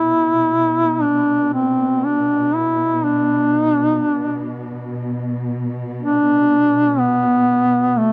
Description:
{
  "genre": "caucasian folk, Caucasian lament",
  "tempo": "free time",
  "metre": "none",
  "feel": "none",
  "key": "B phrygian",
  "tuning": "A4 = 438 Hz",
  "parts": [
    { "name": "warm duduk", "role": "melody", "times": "0.0-8.1 s", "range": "A3 to E4", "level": "-18 LUFS", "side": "equal", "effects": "tape echo" },
    { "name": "warm studio cello section", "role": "drone", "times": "0.0-8.1 s", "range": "B2", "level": "-27 LUFS", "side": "equal", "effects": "none" }
  ],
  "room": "light reverb",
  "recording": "dry, close 1970s-style studio recording",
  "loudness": "-18 LUFS",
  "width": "mono",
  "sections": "0.0-8.1 A section",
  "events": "none",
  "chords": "none",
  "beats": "free time"
}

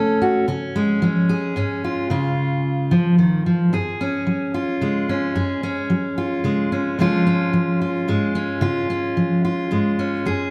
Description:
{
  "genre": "folk",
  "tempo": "110 BPM",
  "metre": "3/4",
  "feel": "straight",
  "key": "Db major",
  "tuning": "A4 = 440 Hz",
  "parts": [
    { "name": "fingerpicked steel-string acoustic guitar", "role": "solo", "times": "0.0-10.5 s", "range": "Gb2 to A4", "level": "-20 LUFS", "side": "equal", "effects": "none" }
  ],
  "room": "moderate scoring stage reverb, RT60 2.0 s",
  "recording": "none",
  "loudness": "-21 LUFS",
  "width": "mono",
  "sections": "0.0-2.1 A section; 2.1-3.7 B section; 3.7-10.5 C section",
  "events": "none",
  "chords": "0.5 Db; 3.7 Gbsus2; 7.0 Db",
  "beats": "| 0.47 1.01 1.56 | 2.10 2.64 3.18 | 3.73 4.27 4.81 | 5.36 5.90 6.45 | 6.99 7.53 8.08 | 8.62 9.17 9.71 | 10.26"
}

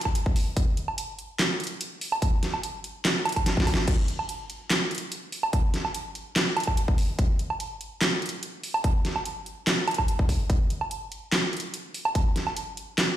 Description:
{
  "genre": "dubstep",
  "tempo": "145 BPM",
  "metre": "4/4",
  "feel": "half-time",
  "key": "none",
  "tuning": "none",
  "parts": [
    { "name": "dubstep drum kit", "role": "drums", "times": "0.0-13.1 s", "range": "crash cymbal, handclaps, hi-hat, snare drum, woodblock", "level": "-27 LUFS", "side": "right 1 dB", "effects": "overdrive" },
    { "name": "electronic kick drum", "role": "drums", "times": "0.1-12.2 s", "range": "none", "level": "-24 LUFS", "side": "equal", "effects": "overdrive" }
  ],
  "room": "moderate plate reverb, RT60 1.7 s",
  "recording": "played on a big sound system in a bare room, large studio reverb",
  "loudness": "-24 LUFS",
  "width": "side -12 dB against mid",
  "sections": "0.0-13.2 A section",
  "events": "drum fill 3.5-3.9",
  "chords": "none",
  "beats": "0.15 | 0.56 0.98 1.39 1.81 | 2.22 2.63 3.05 3.46 | 3.88 4.29 4.70 5.12 | 5.53 5.95 6.36 6.77 | 7.19 7.60 8.01 8.43 | 8.84 9.26 9.67 10.08 | 10.50 10.91 11.32 11.74 | 12.15 12.56 12.98"
}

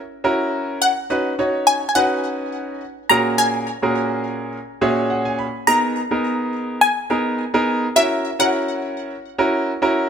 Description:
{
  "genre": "pop",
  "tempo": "105 BPM",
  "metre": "4/4",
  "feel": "straight",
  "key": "unclear",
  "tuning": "A4 = 442 Hz",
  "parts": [
    { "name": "wide unison pluck", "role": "melody", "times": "0.0-9.9 s", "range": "E5 to A#5", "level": "-18 LUFS", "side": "left 1 dB", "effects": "digital delay" },
    { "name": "clear concert grand piano", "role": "accompaniment", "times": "0.2-10.1 s", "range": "A#2 to B5", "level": "-20 LUFS", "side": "right 1 dB", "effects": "none" }
  ],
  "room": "moderate lush hall reverb, RT60 2.4 s",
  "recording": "faint mains hum",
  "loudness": "-17 LUFS",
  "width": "side -7 dB against mid",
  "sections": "0.0-5.7 A section; 5.7-10.1 B section",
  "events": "grand piano fill 4.5-5.7",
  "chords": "0.0 F#7; 1.1 Badd9; 3.1 F#add9/A#; 5.7 G#madd9; 8.0 F#7",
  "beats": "0.53 | 1.10 1.67 2.24 2.81 | 3.39 3.96 4.53 5.10 | 5.67 6.24 6.82 7.39 | 7.96 8.53 9.10 9.67"
}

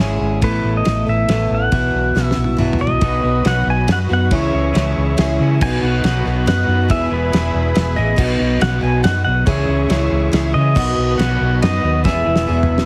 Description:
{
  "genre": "folk rock and heartland rock",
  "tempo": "140 BPM",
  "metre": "3/4",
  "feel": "straight",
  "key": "unclear",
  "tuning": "A4 = 441 Hz",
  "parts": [
    { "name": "pedal steel guitar", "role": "melody", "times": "0.0-12.9 s", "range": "B4 to G#5", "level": "-24 LUFS", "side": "equal", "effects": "slapback echo" },
    { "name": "picked plugged-in twelve-string acoustic guitar", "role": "accompaniment", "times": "0.0-12.9 s", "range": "B2 to A4", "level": "-25 LUFS", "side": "equal", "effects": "none" },
    { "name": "electric guitar through a small old amp", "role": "riff", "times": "0.0-12.9 s", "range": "E2 to A4", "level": "-25 LUFS", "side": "equal", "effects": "none" },
    { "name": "hollow-body short-scale fingered electric bass", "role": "bass", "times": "0.0-12.9 s", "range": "E1 to C#3", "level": "-21 LUFS", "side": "equal", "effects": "none" },
    { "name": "damped 70s drum kit", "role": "drums", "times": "0.0-12.9 s", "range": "crash cymbal, kick drum, ride cymbal, snare drum, toms", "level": "-23 LUFS", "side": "equal", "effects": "none" },
    { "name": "musette accordion", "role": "sustained chords", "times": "3.0-12.9 s", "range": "F#4 to C#6", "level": "-33 LUFS", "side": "equal", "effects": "none" }
  ],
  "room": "light reverb",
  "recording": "heavily compressed radio sound",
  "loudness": "-16 LUFS",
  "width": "mono",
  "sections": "0.0-3.0 A section; 3.0-12.9 B section",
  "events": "drum fill 2.2-3.0, 12.0-12.9",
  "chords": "0.4 Asus2; 1.7 Bsus4; 3.0 B; 4.3 C#m; 5.6 B; 6.9 E; 8.2 B; 9.5 C#m; 10.8 B; 12.0 E",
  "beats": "0.00 | 0.43 0.86 1.30 | 1.73 2.16 2.59 | 3.02 3.46 3.89 | 4.32 4.75 5.18 | 5.61 6.04 6.47 | 6.90 7.33 7.75 | 8.19 8.61 9.04 | 9.47 9.90 10.33 | 10.76 11.19 11.62 | 12.04 12.47"
}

